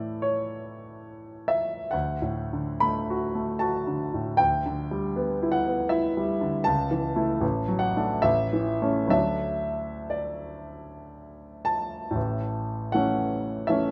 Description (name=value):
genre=classical, romantic nocturne for solo piano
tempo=54-81 BPM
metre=3/4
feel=rubato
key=D major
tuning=A4 = 440 Hz
part: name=clear grand piano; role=solo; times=0.0-13.9 s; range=A1 to B5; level=-27 LUFS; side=equal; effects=none
room=moderate stone room reverb, RT60 1.3 s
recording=none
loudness=-27 LUFS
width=mono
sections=0.0-12.2 A section; 12.2-13.9 B section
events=none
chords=0.0 A; 1.9 D; 4.4 Em7/D; 6.7 A/C#; 7.4 D/A; 8.2 A; 9.1 D; 12.2 A